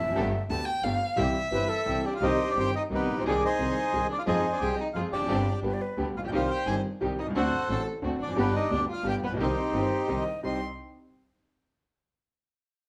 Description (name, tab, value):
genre	tango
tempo	176 BPM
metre	3/4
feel	rubato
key	C harmonic minor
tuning	A4 = 440 Hz
part	breathy concert flute	second line	0.0-2.2, 5.5-6.1, 9.7-10.6 s	G4 to E5	-35 LUFS	equal	none
part	bright grand piano	accompaniment	0.0-10.6 s	G1 to Ab4	-34 LUFS	equal	none
part	clear double bass	bass	0.0-10.6 s	F1 to F2	-36 LUFS	equal	none
part	rich studio string section	stabs	0.2-10.6 s	B3 to A4	-38 LUFS	equal	none
part	warm violin	second line	0.5-10.6 s	B3 to C6	-36 LUFS	equal	none
part	bandoneon	melody	2.1-10.6 s	D4 to A5	-32 LUFS	equal	none
room	moderate large studio reverb, RT60 0.9 s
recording	band playing live in one room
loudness	-28 LUFS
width	mono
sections	0.0-2.2 A section; 2.2-10.4 B section; 10.4-11.5 C section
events	violin solo 0.0-2.2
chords	0.2 Gadd9; 1.2 C; 2.2 Cm; 3.3 Ab/C; 4.3 Fm; 5.3 Gsus4; 5.6 G; 6.3 Cm; 7.4 D7; 8.4 G; 9.4 Cm